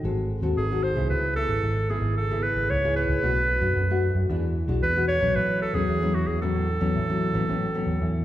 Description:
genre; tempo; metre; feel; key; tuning
samba and choro; 113 BPM; 4/4; straight; A major; A4 = 443 Hz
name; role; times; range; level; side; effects
nylon-string guitar; accompaniment; 0.0-8.2 s; F#2 to A4; -28 LUFS; left 3 dB; none
vintage muted fingered electric bass; bass; 0.0-8.2 s; G#1 to F#2; -26 LUFS; right 1 dB; none
clear clarinet; melody; 0.6-8.2 s; F#4 to C#5; -26 LUFS; right 2 dB; none
room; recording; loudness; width
wet recital hall reverb, RT60 1.7 s; recorded in a church or concert hall; -22 LUFS; side -13 dB against mid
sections
0.0-8.2 A section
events
none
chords
0.0 G#7b9; 1.1 C#m7; 3.2 Bm7; 4.3 E9; 5.4 A69

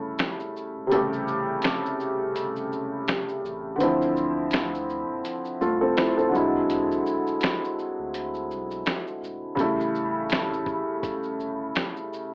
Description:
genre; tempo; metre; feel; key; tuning
lo-fi hip hop; 83 BPM; 4/4; swing 58% on 16ths; unclear; A4 = 440 Hz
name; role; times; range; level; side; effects
felt-muted upright piano; accompaniment; 0.0-12.3 s; C3 to C5; -24 LUFS; equal; cassette tape
warm sub bass; bass; 0.0-12.3 s; E1 to E2; -44 LUFS; equal; none
dusty soul sampler-style drum kit; drums; 0.2-12.3 s; finger snaps, hi-hat, kick drum, shaker, snare drum; -28 LUFS; equal; none
room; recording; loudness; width
moderate small room reverb, RT60 0.5 s; worn, warbling old tape, cassette tape, warbly pitch drift, AM radio sound; -24 LUFS; side -35 dB against mid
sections
0.0-12.3 A section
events
break 0.0-9.6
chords
0.0 A7; 3.8 Dm9; 6.3 E9; 9.6 A7

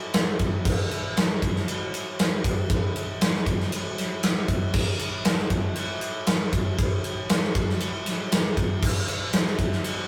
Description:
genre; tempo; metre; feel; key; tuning
rock; 118 BPM; 4/4; straight; none; none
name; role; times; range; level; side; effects
big rock drum kit; drums; 0.1-10.0 s; crash cymbal, kick drum, ride cymbal, snare drum; -25 LUFS; equal; none
room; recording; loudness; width
light reverb; rough rehearsal-room recording, warm saturation; -25 LUFS; mono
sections
0.0-10.1 A section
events
none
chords
none

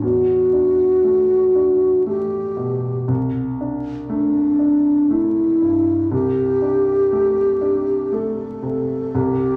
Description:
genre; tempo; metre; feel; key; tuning
classical, impressionist duo for alto flute and grand piano; 59 BPM; 3/4; rubato; unclear; A4 = 440 Hz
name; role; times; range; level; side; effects
mellow hollow alto flute; melody; 0.0-9.6 s; D4 to A4; -19 LUFS; equal; none
warm grand piano; accompaniment; 0.0-9.6 s; C2 to D4; -26 LUFS; equal; none
room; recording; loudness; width
wet recital hall reverb, RT60 1.4 s; vinyl crackle; -18 LUFS; mono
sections
0.0-9.6 A section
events
none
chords
0.0 Em11; 3.1 C69; 6.1 D5/C

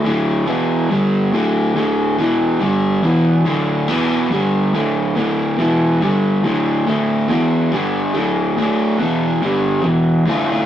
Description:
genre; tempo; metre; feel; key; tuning
rock; 141 BPM; 4/4; straight; unclear; A4 = 440 Hz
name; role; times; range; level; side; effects
crunchy overdriven guitar; solo; 0.0-10.7 s; D2 to F4; -14 LUFS; equal; none
room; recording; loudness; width
moderate studio reverb, RT60 0.5 s; rough rehearsal-room recording, tube saturation; -15 LUFS; side -10 dB against mid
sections
0.0-10.3 A section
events
none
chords
0.5 E5; 0.9 G5; 1.3 D5; 2.2 E5; 2.6 G5; 3.0 E5; 3.5 D5; 3.9 E5; 4.3 G5; 4.7 D5; 5.6 E5; 6.0 G5; 6.4 D5; 7.3 E5; 7.7 G5; 8.1 D5; 9.0 E5; 9.4 G5; 9.8 E5

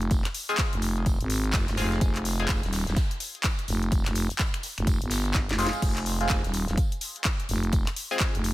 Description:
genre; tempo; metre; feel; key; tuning
bass house; 126 BPM; 4/4; swing 61% on 16ths; F minor; A4 = 441 Hz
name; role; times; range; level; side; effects
growling FM bass; bass; 0.0-8.5 s; Eb1 to Ab1; -27 LUFS; equal; overdrive, sidechain pumping
house drum kit; drums; 0.0-8.5 s; crash cymbal, finger snaps, handclaps, hi-hat, snare drum; -31 LUFS; left 1 dB; overdrive
electronic kick drum; drums; 0.1-8.3 s; none; -26 LUFS; equal; overdrive
gated 80s drum kit; drums; 0.1-8.5 s; hi-hat, snare drum, tambourine; -39 LUFS; right 1 dB; sidechain pumping on hats, high-pass filter on hats, high-pass filter on snare, sidechain pumping on perc, high-pass filter on perc, high-pass filter on room
band-passed chord stab; stabs; 0.5-2.6, 5.6-8.3 s; Ab3 to Ab4; -32 LUFS; left 1 dB; phaser, sidechain pumping, dub echo
room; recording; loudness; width
little or no reverb; none; -24 LUFS; side -16 dB against mid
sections
0.0-8.5 A section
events
drum fill 5.3-5.8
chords
0.0 Fm

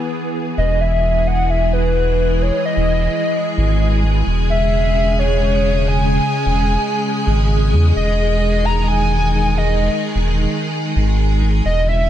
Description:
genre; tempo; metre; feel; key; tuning
IDM; 130 BPM; 4/4; straight; E major; A4 = 440 Hz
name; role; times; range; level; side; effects
soft string machine; sustained chords; 0.0-12.1 s; C#3 to G#4; -20 LUFS; equal; ensemble chorus
warbly nostalgic lead; melody; 0.6-12.1 s; B4 to A#5; -20 LUFS; left 1 dB; chorus, tremolo, digital delay
round analog bass; bass; 0.6-12.1 s; E1 to E2; -16 LUFS; equal; none
room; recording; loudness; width
digital ambience; none; -14 LUFS; side -11 dB against mid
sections
0.6-12.1 A section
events
none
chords
0.0 C#m/E (rootless); 0.6 Emaj7; 4.3 C#m/E; 8.0 Emaj7

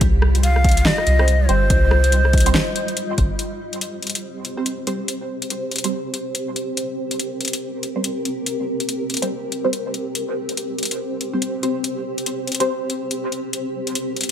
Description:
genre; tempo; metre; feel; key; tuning
deep dubstep; 142 BPM; 4/4; swing 60% on 16ths, half-time; C minor; A4 = 440 Hz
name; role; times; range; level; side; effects
granular cloud pad; sustained chords; 0.0-14.3 s; G3 to Eb5; -26 LUFS; equal; built-in reverb
soft dub sub bass; bass; 0.0-3.3 s; G1 to C2; -16 LUFS; equal; none
deep house drum kit; drums; 0.0-14.3 s; hi-hat, rim click, snare drum; -23 LUFS; left 1 dB; overdrive, studio reverb
electronic kick drum; drums; 0.0-3.3 s; none; -19 LUFS; equal; overdrive, studio reverb
breathy ney; melody; 0.4-3.0 s; C5 to F5; -22 LUFS; left 1 dB; dub echo
filtered dub chord stab; stabs; 1.2-12.7 s; G3 to C5; -26 LUFS; right 1 dB; phaser, lush chorus, dub echo
room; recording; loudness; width
light reverb; none; -19 LUFS; side -9 dB against mid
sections
0.0-3.4 A section; 3.4-14.3 B section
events
none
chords
0.0 C5

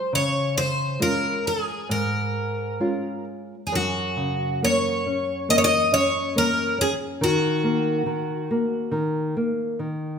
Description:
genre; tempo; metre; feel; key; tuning
fado-style ballad; 69 BPM; 4/4; rubato; Db major, F# major from 3.7 s; A4 = 440 Hz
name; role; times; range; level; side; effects
picked twelve-string acoustic guitar; melody; 0.0-8.9 s; F#4 to D#5; -23 LUFS; equal; none
nylon-string guitar; accompaniment; 0.1-10.2 s; F#2 to F4; -25 LUFS; equal; none
room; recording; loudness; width
moderate scoring stage reverb, RT60 1.7 s; minimal, uncompressed stereo recording; -21 LUFS; side -6 dB against mid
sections
0.0-3.7 A section; 3.7-10.2 B section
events
none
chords
0.1 Db; 3.7 F#; 7.2 D#m

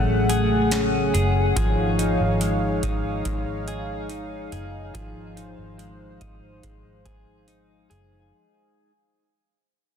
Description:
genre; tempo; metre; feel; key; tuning
dream pop; 71 BPM; 4/4; straight; Db major; A4 = 441 Hz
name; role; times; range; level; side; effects
warm analog pad; sustained chords; 0.0-8.3 s; Db3 to Gb5; -26 LUFS; equal; chorus
clean electric guitar; arpeggios; 0.0-8.9 s; F3 to Ab4; -27 LUFS; left 3 dB; wide subtle chorus, ping-pong delay
vintage muted fingered electric bass; bass; 0.0-8.3 s; Gb1 to A1; -26 LUFS; right 1 dB; none
booming analog drum machine; drums; 0.3-8.1 s; hi-hat, kick drum, snare drum; -28 LUFS; right 1 dB; none
room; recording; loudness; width
moderate concert hall reverb, RT60 2.1 s; dense, heavily limited modern master; -20 LUFS; side -7 dB against mid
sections
0.0-8.3 A section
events
fade-out 0.0-8.3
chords
0.0 Gbmadd9/A; 1.6 Dbadd9

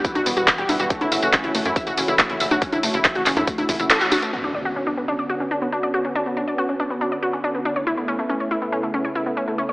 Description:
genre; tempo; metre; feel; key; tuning
uplifting trance; 140 BPM; 4/4; straight; B minor; A4 = 440 Hz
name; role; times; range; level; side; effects
filtered supersaw swell; sustained chords; 0.0-9.7 s; C#3 to F#4; -27 LUFS; equal; sidechain pumping, low-pass filter
wide unison pluck; arpeggios; 0.0-9.7 s; A3 to F#5; -23 LUFS; equal; sidechain pumping, tape echo
electronic kick drum; drums; 0.0-3.8 s; none; -26 LUFS; equal; none
punchy analog drum machine; drums; 0.0-4.3 s; congas, handclaps, hi-hat, tambourine; -20 LUFS; equal; overdrive, sidechain pumping on hats, sidechain pumping on perc
tight sequencer bass; bass; 0.2-3.9 s; E1 to F#2; -29 LUFS; equal; sidechain pumping
impact; sound effects; 4.3-6.0 s; none; -36 LUFS; equal; none
room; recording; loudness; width
moderate lush hall reverb, RT60 1.8 s, digital ambience; AM radio sound; -19 LUFS; side -23 dB against mid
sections
0.0-4.3 A section; 4.3-9.7 B section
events
kick drops out 3.9-4.3; band accent 3.9; impact 4.3-6.0; filter sweep on supersaw synth 4.3-9.7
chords
0.0 Emadd9; 0.9 F#m7; 4.3 Bmadd9; 7.8 Aadd9

